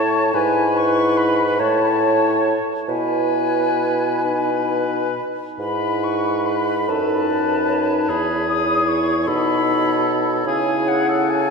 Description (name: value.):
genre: classical, slow romantic movement for wind quintet.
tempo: 43-51 BPM (dotted quarters).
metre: 6/8.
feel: rubato.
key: E major.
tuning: A4 = 440 Hz.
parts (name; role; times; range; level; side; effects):
silver concert flute; melody; 0.0-11.5 s; F#5 to D#6; -22 LUFS; left 4 dB; none.
warm oboe; second line; 0.0-11.5 s; G#4 to C#5; -24 LUFS; left 2 dB; none.
dark French horn; accompaniment; 0.0-11.5 s; D#4 to E4; -23 LUFS; left 1 dB; none.
warm clarinet; accompaniment; 0.0-11.5 s; A4 to C#5; -25 LUFS; right 5 dB; none.
warm bassoon; bass; 0.0-11.5 s; E2 to C#3; -24 LUFS; right 2 dB; none.
room: wet church reverb, RT60 2.9 s.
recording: dark, warm production.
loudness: -17 LUFS.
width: side -4 dB against mid.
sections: 0.0-11.5 A section.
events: none.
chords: 0.3 E/G#; 1.6 A; 2.9 E/B; 4.2 B; 5.6 E/G#; 6.9 B7/F#; 8.1 E; 9.3 B7; 10.5 C#m.